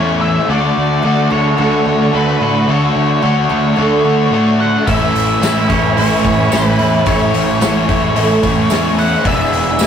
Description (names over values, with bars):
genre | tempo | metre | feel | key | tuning
rock, shoegaze and dream pop | 110 BPM | 4/4 | straight | A major | A4 = 440 Hz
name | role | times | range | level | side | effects
octave-fuzz lead guitar | melody | 0.0-9.9 s | B4 to F#5 | -20 LUFS | left 1 dB | distortion
picked twelve-string acoustic guitar | arpeggios | 0.0-9.9 s | F#4 to C#5 | -23 LUFS | right 4 dB | none
cranked stack guitar | riff | 0.0-9.9 s | A2 to A4 | -18 LUFS | equal | overdrive
overdriven electric guitar | riff | 0.0-9.9 s | E2 to F#4 | -17 LUFS | left 3 dB | none
twangy electric guitar | riff | 0.0-9.9 s | E2 to F#4 | -20 LUFS | right 4 dB | none
growling picked electric bass | bass | 0.0-9.9 s | E1 to A2 | -18 LUFS | equal | overdrive
loose indie drum kit | drums | 4.9-9.9 s | hi-hat, kick drum, snare drum | -19 LUFS | left 1 dB | none
tambourine | percussion | 5.4-9.9 s | none | -26 LUFS | right 6 dB | none
room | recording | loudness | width
wet booth ambience, RT60 0.2 s | rough rehearsal-room recording, warm saturation | -11 LUFS | side -8 dB against mid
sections
0.0-9.9 A section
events
none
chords
0.5 Dmaj7; 4.9 Amaj7; 9.3 E7